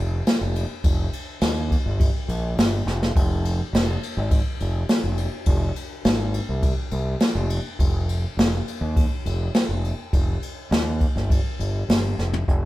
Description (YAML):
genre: psychedelic rock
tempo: 103 BPM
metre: 4/4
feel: straight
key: F minor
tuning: A4 = 439 Hz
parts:
  - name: growling fingered electric bass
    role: bass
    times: 0.0-12.7 s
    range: F1 to Eb2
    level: -24 LUFS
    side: equal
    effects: overdrive
  - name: jazz brush drum kit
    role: drums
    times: 0.3-12.6 s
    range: hi-hat, kick drum, ride cymbal, snare drum, toms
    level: -22 LUFS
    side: equal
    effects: none
room: light reverb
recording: band playing live in one room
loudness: -20 LUFS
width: side -16 dB against mid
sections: 0.0-12.5 A section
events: drum fill 2.9, 12.2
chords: none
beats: 0.27 | 0.85 1.42 2.00 2.58 | 3.16 3.73 4.31 4.89 | 5.47 6.05 6.63 7.21 | 7.79 8.37 8.96 9.54 | 10.13 10.71 11.30 11.89 | 12.48